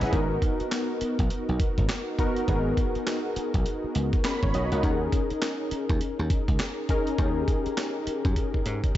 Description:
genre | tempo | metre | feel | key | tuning
R&B, new jack swing | 102 BPM | 4/4 | swing 61% on 16ths | G# minor | A4 = 440 Hz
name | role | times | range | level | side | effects
warm analog keys | accompaniment | 0.0-9.0 s | B3 to B5 | -28 LUFS | left 1 dB | chorus
dry thumbed slap bass | bass | 0.0-8.8 s | F#1 to G#2 | -28 LUFS | equal | none
breakbeat sampler-style drum kit | drums | 0.0-9.0 s | handclaps, hi-hat, kick drum, snare drum | -27 LUFS | equal | none
room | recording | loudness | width
moderate echo chamber reverb, RT60 2.3 s | dark, warm production, nothing above 7.9 kHz | -24 LUFS | side -13 dB against mid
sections
0.0-9.0 A section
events
synth keys fill 4.0-4.8; drum fill 8.4-9.0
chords
0.1 G#m9; 4.8 D#7sus4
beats
| 0.13 0.72 1.30 1.89 | 2.48 3.07 3.66 4.25 | 4.83 5.42 6.01 6.60 | 7.19 7.78 8.36 8.95

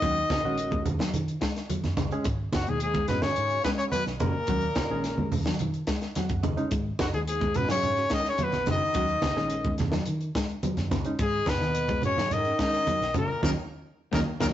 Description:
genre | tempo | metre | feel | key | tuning
afrobeat | 107 BPM | 4/4 | straight | G# minor | A4 = 440 Hz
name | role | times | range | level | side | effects
bright trumpet | melody | 0.0-14.5 s | F#4 to D#5 | -28 LUFS | left 2 dB | none
clear trombone section | second line | 0.0-14.5 s | F#2 to D#3 | -38 LUFS | right 2 dB | slapback echo
trombone with bucket mute | second line | 0.0-14.5 s | F#3 to D#4 | -39 LUFS | right 4 dB | none
barky reed electric piano | accompaniment | 0.0-14.5 s | G#3 to F#5 | -34 LUFS | right 2 dB | fast tremolo
clean electric guitar | arpeggios | 0.0-14.5 s | B2 to A#3 | -33 LUFS | left 2 dB | none
vintage muted fingered electric bass | bass | 0.0-14.5 s | F#1 to D#3 | -33 LUFS | equal | none
tight funk drum kit | drums | 0.0-14.5 s | hi-hat, kick drum, snare drum | -32 LUFS | equal | none
congas | percussion | 0.0-14.5 s | none | -32 LUFS | right 3 dB | none
room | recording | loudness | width
moderate stone room reverb, RT60 1.0 s | rough rehearsal-room recording, warm saturation, nothing above 7.8 kHz | -25 LUFS | side -12 dB against mid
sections
0.0-14.5 A section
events
reed electric piano fill 5.9-6.7; band accent 13.4-14.5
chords
0.0 D#m7; 2.3 G#m7; 4.5 D#m7; 6.7 G#m7; 9.0 D#m7; 11.2 G#m7; 13.4 D#m7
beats
| 0.02 0.58 1.14 1.70 | 2.26 2.81 3.37 3.93 | 4.49 5.05 5.61 6.17 | 6.73 7.29 7.84 8.40 | 8.96 9.52 10.08 10.63 | 11.19 11.75 12.31 12.87 | 13.43 13.98

